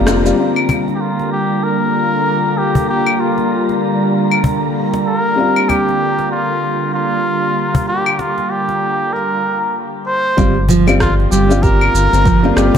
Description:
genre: organic downtempo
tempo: 96 BPM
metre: 4/4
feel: swing 59% on 16ths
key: G minor pentatonic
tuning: A4 = 440 Hz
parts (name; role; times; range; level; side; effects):
- felt-muted upright piano; accompaniment; 0.0-12.8 s; G3 to F4; -19 LUFS; left 4 dB; sidechain pumping, ping-pong delay
- bowed-like drone; sustained chords; 0.0-12.8 s; D3 to F4; -19 LUFS; equal; built-in reverb, sidechain pumping
- nylon-string guitar; arpeggios; 0.0-0.4, 10.4-12.8 s; F3 to G4; -17 LUFS; right 3 dB; ping-pong delay
- round analog bass; bass; 0.0-0.3, 10.4-12.7 s; F1 to G1; -15 LUFS; equal; none
- wind-like tuned noise texture; texture; 0.0-9.1 s; Bb5; -27 LUFS; right 2 dB; built-in reverb
- electronic rim click, shaker and claves; drums; 0.1-12.7 s; none; -19 LUFS; left 3 dB; none
- cajon; percussion; 0.7-12.8 s; none; -19 LUFS; left 2 dB; none
- trumpet with cup mute; melody; 0.9-12.8 s; F4 to C5; -18 LUFS; equal; tape echo
- electronic kick drum; drums; 10.4-12.4 s; none; -17 LUFS; equal; none
room: moderate scoring stage reverb, RT60 1.7 s, small room ambience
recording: none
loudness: -13 LUFS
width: side -8 dB against mid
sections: 0.4-10.4 A section; 10.4-12.8 B section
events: band accent 0.1-0.4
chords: 0.4 Gm7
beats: | 0.38 1.01 1.63 2.26 | 2.88 3.51 4.13 4.76 | 5.38 6.01 6.63 7.26 | 7.88 8.51 9.13 9.76 | 10.38 11.01 11.63 12.26

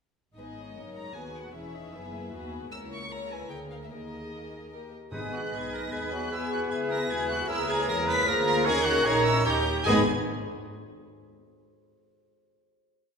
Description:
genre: quick classical-period movement for symphony orchestra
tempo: 152 BPM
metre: 3/4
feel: straight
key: G# minor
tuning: A4 = 444 Hz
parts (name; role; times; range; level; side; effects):
- warm chamber violin section; melody; 0.4-10.1 s; D#5 to B6; -34 LUFS; equal; none
- warm studio violin section; second line; 0.4-10.1 s; G#4 to A#5; -36 LUFS; left 2 dB; none
- dark studio viola section; accompaniment; 0.4-10.1 s; G#3 to G#4; -37 LUFS; right 1 dB; none
- dark chamber cello section; bass; 0.4-10.1 s; C#2 to B4; -36 LUFS; right 2 dB; none
- dark chamber double bass section; bass; 0.4-10.1 s; E1 to E2; -37 LUFS; right 1 dB; none
- bright large flute ensemble; second line; 5.1-10.1 s; G#5 to B5; -35 LUFS; right 1 dB; none
- mellow clarinet; second line; 5.1-10.0 s; G#4 to A#4; -36 LUFS; equal; none
- warm oboe; second line; 5.1-10.0 s; A#4 to D#5; -34 LUFS; right 1 dB; none
- dark bassoon; accompaniment; 5.1-10.0 s; D#3 to G#3; -36 LUFS; right 1 dB; none
- warm French horn section; sustained chords; 5.1-10.0 s; A#3 to A#4; -32 LUFS; left 2 dB; none
- clear trumpet; stabs; 5.1-10.0 s; D#4 to B4; -33 LUFS; right 1 dB; none
- timpani; percussion; 5.1-5.7, 9.9-10.1 s; G#2; -37 LUFS; left 1 dB; none
room: wet scoring stage reverb, RT60 1.9 s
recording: minimal, uncompressed stereo recording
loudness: -24 LUFS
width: side -6 dB against mid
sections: 0.4-5.1 A section; 5.1-9.9 A section; 9.9-11.1 final chord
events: none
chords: 0.4 G#m; 1.5 E; 2.7 A#dim/C#; 3.5 A#7/D; 3.9 D#sus4; 4.7 D#; 5.1 G#m; 6.3 E; 7.5 A#m7b5/C#; 8.3 A#7/D; 8.7 D#7sus4; 9.5 D#7; 9.9 G#m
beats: | 0.36 0.76 1.15 | 1.54 1.93 2.32 | 2.71 3.11 3.50 | 3.91 4.32 4.72 | 5.13 5.52 5.92 | 6.31 6.71 7.10 | 7.49 7.88 8.27 | 8.66 9.05 9.46 | 9.87

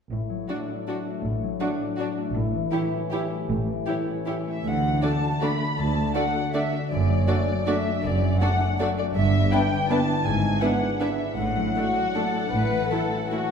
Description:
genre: classical, orchestral ballroom waltz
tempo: 160 BPM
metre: 3/4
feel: uneven beats, rubato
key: D major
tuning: A4 = 440 Hz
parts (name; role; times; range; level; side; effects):
- concert harp; arpeggios; 0.1-13.5 s; F#2 to A4; -28 LUFS; left 5 dB; none
- dark chamber double bass section; bass; 0.1-12.8 s; F#1 to D2; -30 LUFS; right 3 dB; none
- rich chamber cello section; bass; 0.1-12.8 s; D2 to A2; -29 LUFS; right 3 dB; none
- dark studio violin section; melody; 0.5-13.5 s; C#5 to B5; -29 LUFS; left 2 dB; none
- dark studio violin section; second line; 0.5-13.5 s; E4 to D5; -32 LUFS; left 1 dB; none
- warm chamber viola section; accompaniment; 0.5-13.4 s; A3 to E4; -30 LUFS; right 2 dB; none
room: wet recital hall reverb, RT60 1.6 s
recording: minimal, uncompressed stereo recording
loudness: -22 LUFS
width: side -6 dB against mid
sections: 0.1-4.7 A section; 4.7-13.5 B section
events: none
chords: 0.1 D/A; 2.4 A7; 4.7 D; 6.9 D/F#; 9.2 Em7/G; 10.2 E7/G#; 11.4 D/A; 12.5 A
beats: | 0.12 0.49 0.88 | 1.25 1.61 1.99 | 2.35 2.73 3.12 | 3.49 3.87 4.27 | 4.65 5.03 5.42 | 5.79 6.16 6.55 | 6.91 7.28 7.67 | 8.03 8.40 8.79 | 9.15 9.52 9.89 | 10.25 10.62 11.00 | 11.38 11.76 12.16 | 12.53 12.91 13.31

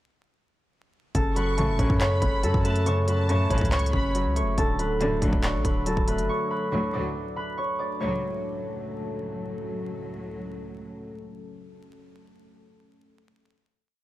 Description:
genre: hip hop, trap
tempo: 140 BPM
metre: 4/4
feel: half-time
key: F# minor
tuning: A4 = 440 Hz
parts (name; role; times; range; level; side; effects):
- concert harp; melody; 1.1-9.9 s; A4 to D6; -29 LUFS; equal; none
- dark concert grand piano; accompaniment; 1.1-7.2 s; C#3 to D5; -30 LUFS; equal; none
- deep dark ambient pad; sustained chords; 3.3-11.1 s; F#3 to A4; -38 LUFS; left 1 dB; chorus, built-in reverb
- long sustained 808-style bass; bass; 1.1-6.3 s; D1 to F#2; -26 LUFS; equal; none
- trap drum kit; drums; 1.1-6.3 s; handclaps, hi-hat, kick drum; -26 LUFS; equal; none
- warm symphonic violin section; second line; 1.4-4.1 s; A5 to C#6; -35 LUFS; equal; analog delay
- dark studio string section; stabs; 1.6-11.1 s; A1 to F#3; -32 LUFS; equal; none
room: small room ambience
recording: dry, gritty hardware recording, vinyl crackle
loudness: -23 LUFS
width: side -15 dB against mid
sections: 1.1-8.0 hook; 8.0-11.4 final chord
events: none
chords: 1.1 F#m; 4.6 D; 8.0 F#m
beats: | 1.15 1.58 2.01 2.43 | 2.86 3.29 3.72 4.15 | 4.58 5.01 5.43 5.86 | 6.29 6.72 7.15 7.58 | 8.01 8.43 8.86 9.29 | 9.72 10.15 10.58 11.01

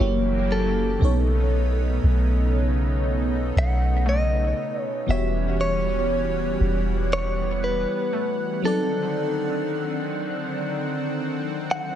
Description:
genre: R&B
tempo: 59 BPM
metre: 4/4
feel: swing 54% on 16ths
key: E dorian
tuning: A4 = 439 Hz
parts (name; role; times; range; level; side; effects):
- direct-recorded clean electric guitar; melody; 0.0-12.0 s; A4 to F#5; -27 LUFS; equal; spring reverb, analog delay
- FM electric piano with soft pad layer; accompaniment; 0.0-12.0 s; B2 to D5; -28 LUFS; equal; chorus, phaser, analog delay
- lush unison pad; sustained chords; 0.0-12.0 s; C#3 to F#5; -29 LUFS; equal; chorus
- soft 808-style bass; bass; 0.0-7.9 s; E1 to B1; -22 LUFS; equal; none
- glassy wavetable pluck; texture; 4.1-9.1 s; A3; -35 LUFS; right 2 dB; chorus, analog delay
room: digital ambience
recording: echo-heavy mix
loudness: -21 LUFS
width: side -10 dB against mid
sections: 0.0-12.0 A section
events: none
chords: 0.0 F#7b9; 1.0 B9; 5.1 Em69; 8.6 D7b9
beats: 0.00 | 1.01 2.03 3.05 4.07 | 5.08 6.10 7.12 8.13 | 9.15 10.17 11.18

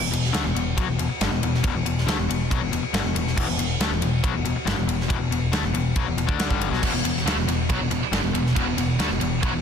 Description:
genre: heavy metal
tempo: 139 BPM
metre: 4/4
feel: straight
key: E minor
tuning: A4 = 440 Hz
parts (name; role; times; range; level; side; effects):
- distorted electric guitar; riff; 0.0-9.6 s; E2 to D4; -25 LUFS; left 7 dB; distortion
- growling picked electric bass; bass; 0.0-9.6 s; E1 to D2; -28 LUFS; right 1 dB; overdrive
- big rock drum kit; drums; 0.1-9.5 s; crash cymbal, kick drum, ride cymbal, snare drum; -25 LUFS; right 1 dB; none
- heavy high-gain guitar; riff; 6.8-9.6 s; E2 to A3; -27 LUFS; right 16 dB; distortion
room: little or no reverb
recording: dense, heavily limited modern master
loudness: -21 LUFS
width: side -7 dB against mid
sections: 0.0-9.6 A section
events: none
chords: 0.0 Em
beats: 0.34 0.77 1.20 | 1.64 2.07 2.50 2.94 | 3.37 3.80 4.23 4.67 | 5.10 5.53 5.96 6.39 | 6.83 7.26 7.69 8.12 | 8.56 8.99 9.43

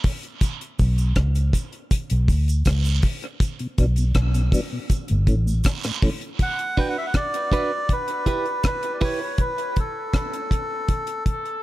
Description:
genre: dub reggae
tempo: 80 BPM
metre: 4/4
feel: straight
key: B minor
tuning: A4 = 441 Hz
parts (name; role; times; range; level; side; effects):
- mellow tonewheel organ; accompaniment; 0.0-6.1 s; A2 to E4; -30 LUFS; left 1 dB; chorus vibrato, slow rotary speaker, high-pass filter
- deep reggae drum kit; drums; 0.0-11.6 s; hi-hat, kick drum, rim click; -22 LUFS; equal; none
- cabasa and guiro; percussion; 0.4-6.1 s; none; -36 LUFS; right 7 dB; high-pass filter on perc, dub echo
- vintage muted fingered electric bass; bass; 0.8-5.6 s; G1 to D2; -19 LUFS; equal; none
- melodica; melody; 6.4-11.2 s; A4 to G5; -26 LUFS; equal; dub echo
- clean electric guitar; accompaniment; 6.8-9.2 s; D4 to B4; -29 LUFS; right 4 dB; dub echo
room: small room ambience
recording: echo-heavy mix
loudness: -20 LUFS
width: side -17 dB against mid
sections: 0.0-6.4 A section; 6.4-11.6 B section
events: break 0.0-6.4, 6.4-11.6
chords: 0.4 Bm; 1.9 Em; 3.4 Bm; 4.9 A; 6.4 Bm; 7.9 Em; 9.4 N.C.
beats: | 0.41 1.16 1.91 2.65 | 3.40 4.15 4.90 5.64 | 6.39 7.14 7.89 8.64 | 9.39 10.14 10.88

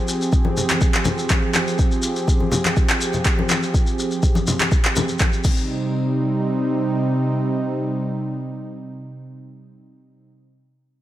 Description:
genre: afro house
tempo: 123 BPM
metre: 4/4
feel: straight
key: C minor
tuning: A4 = 440 Hz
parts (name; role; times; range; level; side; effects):
- warm analog pad; sustained chords; 0.0-10.3 s; C3 to Ab4; -22 LUFS; right 1 dB; chorus, sidechain pumping
- shekere; percussion; 0.1-5.7 s; none; -29 LUFS; left 2 dB; none
- electronic kick drum; drums; 0.3-5.5 s; none; -19 LUFS; equal; none
- congas; percussion; 0.4-5.6 s; none; -24 LUFS; left 3 dB; none
- afro-pop drum kit; drums; 0.7-5.5 s; crash cymbal, handclaps; -23 LUFS; equal; none
room: light reverb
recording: none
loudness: -18 LUFS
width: side -13 dB against mid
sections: 0.0-5.7 A section; 5.7-9.6 B section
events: none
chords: 0.0 Fmadd9; 5.4 Cm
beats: 0.32 0.81 1.30 | 1.79 2.27 2.76 3.25 | 3.74 4.23 4.71 5.20 | 5.69 6.18 6.67 7.15 | 7.64 8.13 8.62 9.10

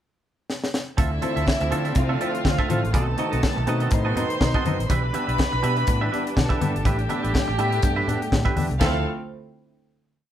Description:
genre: disco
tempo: 123 BPM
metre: 4/4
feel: swing 56% on 16ths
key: D dorian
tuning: A4 = 441 Hz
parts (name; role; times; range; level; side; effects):
- tight funk drum kit; drums; 0.5-8.9 s; hi-hat, kick drum, ride cymbal, snare drum; -24 LUFS; equal; none
- warm studio violin section; second line; 1.0-9.0 s; C4 to C6; -28 LUFS; equal; none
- semi-hollow electric guitar; accompaniment; 1.0-9.0 s; C4 to E5; -29 LUFS; right 5 dB; none
- warm baby grand piano; accompaniment; 1.0-9.0 s; A2 to E4; -31 LUFS; left 3 dB; none
- warm studio string section; sustained chords; 1.0-9.0 s; D3 to F4; -31 LUFS; right 2 dB; none
- fingered electric bass; bass; 1.0-9.0 s; G1 to D3; -26 LUFS; equal; none
- congas; percussion; 1.0-9.0 s; none; -30 LUFS; left 4 dB; none
room: moderate studio reverb, RT60 0.7 s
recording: band playing live in one room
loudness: -20 LUFS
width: side -10 dB against mid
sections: 0.0-1.0 pickup bar; 1.0-8.8 verse; 8.8-10.3 final chord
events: drum fill 0.5-1.0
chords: 0.0 N.C.; 1.0 Dm9; 2.9 B7b9; 4.9 Em7/B; 6.9 A9sus4; 8.8 Dm9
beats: 0.00 0.49 | 0.98 1.47 1.96 2.45 | 2.94 3.43 3.92 4.41 | 4.90 5.38 5.87 6.36 | 6.85 7.34 7.83 8.32 | 8.81

